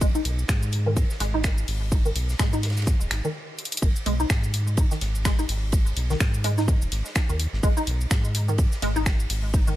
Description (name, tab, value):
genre	minimal techno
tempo	126 BPM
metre	4/4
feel	swing 57% on 16ths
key	G# minor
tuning	A4 = 440 Hz
part	resonant blip pluck	riff	0.0-9.7 s	D#3 to D#4	-30 LUFS	equal	ensemble chorus, sidechain pumping, digital delay
part	round analog bass	bass	0.0-9.7 s	D#1 to G#2	-25 LUFS	equal	sidechain pumping
part	electronic kick drum	drums	0.0-9.6 s	none	-22 LUFS	equal	none
part	house drum kit	drums	0.0-9.8 s	cabasa, finger snaps, hi-hat	-31 LUFS	left 1 dB	none
part	huge arena drum kit	drums	0.0-9.7 s	hi-hat, ride cymbal, snare drum	-37 LUFS	right 1 dB	sidechain pumping on cymbals, high-pass filter on cymbals, sidechain pumping on hats, high-pass filter on hats, high-pass filter on snare, high-pass filter on room
room	studio reverb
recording	none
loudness	-21 LUFS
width	side -14 dB against mid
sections	0.0-3.8 A section; 3.8-9.8 B section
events	stop 3.3-3.8; drum fill 3.6; drop 3.8-9.8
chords	0.0 G#5